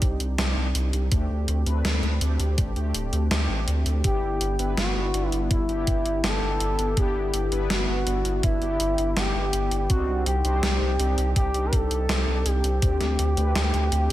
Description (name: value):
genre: synthwave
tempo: 82 BPM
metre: 4/4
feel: straight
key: G major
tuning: A4 = 440 Hz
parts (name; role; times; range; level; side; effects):
- mellow synth brass; stabs; 0.0-14.1 s; G3 to C5; -31 LUFS; left 2 dB; chorus, digital delay
- round analog bass; bass; 0.0-14.1 s; D1 to D2; -25 LUFS; equal; tube saturation
- electronic kick drum; drums; 0.0-13.0 s; none; -24 LUFS; equal; none
- gated 80s digital drum machine; drums; 0.0-14.1 s; hi-hat, snare drum; -28 LUFS; equal; gated reverb, gated reverb snare
- expressive synth lead; melody; 4.0-14.1 s; E4 to B4; -27 LUFS; equal; chorus, cassette tape, digital delay
room: light reverb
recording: none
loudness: -22 LUFS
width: side -14 dB against mid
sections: 0.0-14.1 A section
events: none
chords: 0.0 Cmadd9; 1.1 D7sus4; 4.0 G6; 9.9 Cmadd9; 12.8 D7sus4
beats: 0.38 | 1.12 1.85 2.58 3.31 | 4.04 4.78 5.51 6.24 | 6.97 7.70 8.43 9.16 | 9.90 10.63 11.36 12.09 | 12.82 13.55